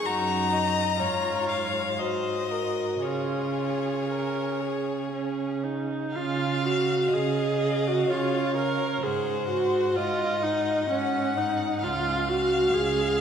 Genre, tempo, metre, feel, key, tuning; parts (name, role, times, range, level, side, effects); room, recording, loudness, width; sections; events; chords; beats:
classical, slow romantic movement for string quartet; 57-67 BPM; 3/4; rubato; Db major; A4 = 440 Hz
clear violin; melody; 0.0-13.2 s; Db5 to Bb5; -32 LUFS; left 6 dB
rich violin; second line; 0.0-13.2 s; Gb4 to Gb5; -30 LUFS; left 3 dB
warm viola; accompaniment; 0.0-13.2 s; Db4 to Bb4; -27 LUFS; right 1 dB
clear cello; bass; 0.1-13.2 s; Db2 to Db3; -31 LUFS; right 4 dB
wet church reverb, RT60 3.4 s; recorded in a church or concert hall; -24 LUFS; side -8 dB against mid
0.0-6.1 A section; 6.1-13.2 B section
0.1 Ebm/Gb; 1.0 Db/Ab; 2.0 Ab7; 3.0 Db; 9.0 Ab7; 11.8 Db
| 0.06 1.00 1.99 | 3.03 4.08 5.11 | 6.15 7.13 8.09 | 9.03 9.96 10.89 | 11.83 12.73